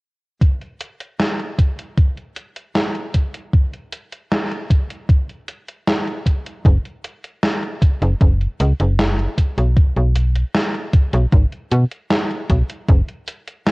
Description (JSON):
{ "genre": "vaporwave", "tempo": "77 BPM", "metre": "4/4", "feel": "straight", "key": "unclear", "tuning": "A4 = 440 Hz", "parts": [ { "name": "electronic kick drum", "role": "drums", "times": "0.4-13.0 s", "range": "none", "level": "-14 LUFS", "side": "equal", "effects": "none" }, { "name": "gated 80s digital drum machine", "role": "drums", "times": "0.4-13.7 s", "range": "hi-hat, snare drum", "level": "-21 LUFS", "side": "equal", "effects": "gated reverb, gated reverb snare" }, { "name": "slap-like FM bass", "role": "bass", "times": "6.6-13.0 s", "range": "F#1 to B2", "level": "-16 LUFS", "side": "equal", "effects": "none" } ], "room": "light reverb", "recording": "worn, warbling old tape, cassette tape, warbly pitch drift, lossy compression artefacts", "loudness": "-16 LUFS", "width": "side -27 dB against mid", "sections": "0.4-12.9 A section", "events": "none", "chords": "none", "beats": "| 0.42 1.20 1.98 2.75 | 3.53 4.31 5.09 5.87 | 6.65 7.43 8.21 8.99 | 9.77 10.55 11.33 12.11 | 12.88 13.66" }